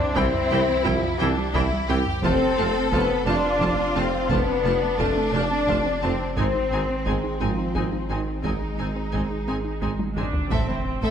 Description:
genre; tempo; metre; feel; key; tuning
cinematic, hybrid orchestral and electronic film score; 58 BPM (dotted quarters); 6/8; straight; unclear; A4 = 440 Hz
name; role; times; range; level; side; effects
rich studio violin section; second line; 0.0-11.1 s; C4 to E5; -29 LUFS; left 3 dB; none
dark French horn section; sustained chords; 0.0-11.1 s; C4 to D5; -27 LUFS; left 4 dB; none
rich studio cello section; bass; 0.0-11.1 s; A2 to D4; -29 LUFS; right 2 dB; none
saturated sub bass; bass; 0.0-11.1 s; F1 to C2; -32 LUFS; right 1 dB; none
warm symphonic violin section; melody; 0.2-10.3 s; G5 to A5; -36 LUFS; left 2 dB; none
clear chamber viola section; accompaniment; 0.2-11.1 s; E3 to F4; -31 LUFS; right 1 dB; none
tight sequenced synth; arpeggios; 0.2-11.1 s; C3 to G#4; -34 LUFS; right 2 dB; none
rich symphonic double bass section; bass; 0.2-10.6 s; F1 to C2; -30 LUFS; right 3 dB; none
warm tuba; bass; 0.2-10.3 s; F1 to C2; -31 LUFS; right 4 dB; none
taiko ensemble; drums; 0.2-11.1 s; none; -31 LUFS; right 1 dB; none
impact; sound effects; 10.5-11.1 s; none; -31 LUFS; right 1 dB; none
room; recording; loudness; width
moderate scoring stage reverb, RT60 1.7 s; none; -21 LUFS; side -8 dB against mid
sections
0.0-10.5 A section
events
drum fill 10.0-10.5; impact 10.5-11.1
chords
0.0 C; 2.2 F; 6.4 G#; 10.5 Am

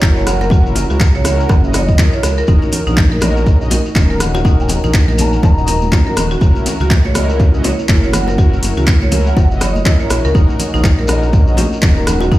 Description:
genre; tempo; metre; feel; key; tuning
afro house; 122 BPM; 4/4; swing 58% on 16ths; Eb phrygian; A4 = 440 Hz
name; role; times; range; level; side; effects
dark analog pad; sustained chords; 0.0-12.4 s; Eb4 to Gb5; -28 LUFS; right 2 dB; none
marimba with hard mallets; arpeggios; 0.0-12.4 s; Db4 to Db5; -22 LUFS; right 1 dB; vintage 12-bit sampler grit, sidechain pumping, dub echo
mellow synth brass; stabs; 0.0-12.4 s; Db4 to Eb5; -23 LUFS; left 1 dB; chorus, phaser, sidechain pumping, dub echo
dark detuned saw bass; bass; 0.0-12.4 s; Eb1 to Db2; -16 LUFS; equal; sidechain pumping
deep house drum kit; drums; 0.0-12.2 s; handclaps, hi-hat, rim click; -21 LUFS; equal; none
electronic kick drum; drums; 0.0-12.4 s; none; -11 LUFS; equal; none
bongos; percussion; 0.0-12.4 s; none; -24 LUFS; left 3 dB; none
shekere; percussion; 0.0-12.4 s; none; -30 LUFS; left 3 dB; none
mellow bass bansuri; melody; 0.3-12.4 s; Eb5 to Bb5; -27 LUFS; equal; dub echo
congas; percussion; 2.6-12.2 s; none; -24 LUFS; right 1 dB; none
room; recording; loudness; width
light reverb, small room ambience; played on a big sound system in a bare room, large studio reverb; -10 LUFS; side -16 dB against mid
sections
0.0-12.4 A section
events
none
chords
0.0 Gb7; 2.5 Ebm7; 6.4 Gb7; 10.3 Ebm7

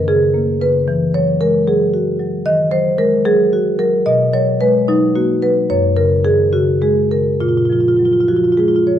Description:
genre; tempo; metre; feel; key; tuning
classical, contemporary piece for solo marimba; 67-77 BPM (dotted quarters); 6/8; rubato; Eb minor; A4 = 442 Hz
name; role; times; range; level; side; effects
marimba with medium mallets; solo; 0.0-9.0 s; F#2 to Eb5; -12 LUFS; equal; none
room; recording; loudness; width
light reverb; dark, warm production; -12 LUFS; side -10 dB against mid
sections
0.0-9.0 A section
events
none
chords
0.0 F#add9; 0.9 Eadd9; 2.5 Ebm; 4.1 B5; 5.7 Gbsus2; 7.4 Bb5

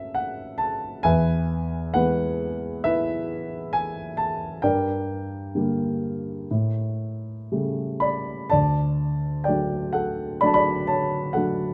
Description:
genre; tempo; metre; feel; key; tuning
classical, lyrical solo piano; 57-69 BPM; 4/4; rubato; D major from 8.5 s; A4 = 440 Hz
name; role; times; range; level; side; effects
dark concert grand piano; solo; 0.0-11.7 s; D2 to B5; -25 LUFS; equal; none
room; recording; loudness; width
moderate recital hall reverb, RT60 1.6 s; none; -25 LUFS; mono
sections
0.0-8.5 A section; 8.5-11.7 B section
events
none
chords
0.0 F#m; 1.0 E; 4.6 Gm; 6.5 A7; 8.5 D

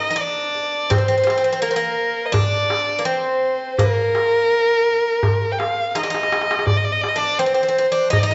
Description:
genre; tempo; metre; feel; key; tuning
Turkish makam ensemble; 83 BPM; 4/4; straight; unclear; A4 = 440 Hz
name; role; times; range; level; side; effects
dark violin; melody; 0.0-8.3 s; Bb4 to G5; -21 LUFS; equal; none
Greek bouzouki; second line; 0.0-8.3 s; Bb3 to Eb4; -26 LUFS; equal; none
darbuka; percussion; 0.6-8.3 s; none; -24 LUFS; equal; none
room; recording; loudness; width
wet recital hall reverb, RT60 1.4 s; dark, warm production, nothing above 7.8 kHz; -19 LUFS; mono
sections
0.0-8.3 A section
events
drum fill 6.0-6.7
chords
none

